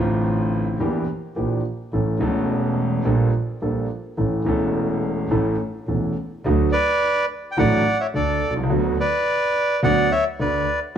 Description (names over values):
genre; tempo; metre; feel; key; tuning
tango; 106 BPM; 4/4; rubato; D major from 6.4 s; A4 = 438 Hz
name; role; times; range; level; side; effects
warm concert grand piano; accompaniment; 0.0-11.0 s; E1 to A4; -22 LUFS; left 1 dB; cassette tape
clear double bass; bass; 0.0-11.0 s; E1 to E2; -26 LUFS; right 4 dB; none
bandoneon; melody; 6.7-10.8 s; A4 to G5; -20 LUFS; right 1 dB; none
room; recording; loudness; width
light reverb, small room ambience; home recording on cassette; -19 LUFS; side -9 dB against mid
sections
0.0-6.4 A section; 6.4-11.0 B section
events
none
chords
0.0 Dm7; 0.8 Em7b5; 1.9 A; 3.0 Gmadd9/Bb; 4.2 A; 6.4 D; 8.7 Bm/D